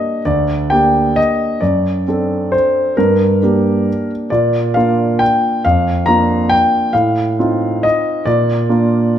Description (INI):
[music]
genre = classical, piano waltz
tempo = 135 BPM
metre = 3/4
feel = uneven beats, rubato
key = G minor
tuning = A4 = 440 Hz
[part]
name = warm grand piano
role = solo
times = 0.0-9.2 s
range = D2 to Bb5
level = -12 LUFS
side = equal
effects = none
[sound]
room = moderate recital hall reverb, RT60 1.5 s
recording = close, detailed microphones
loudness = -12 LUFS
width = side -10 dB against mid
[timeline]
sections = 0.0-9.2 A section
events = none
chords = 0.0 Gm; 1.6 D7/F#; 3.0 Gm; 4.3 Bb; 7.0 F7/A; 8.3 Bb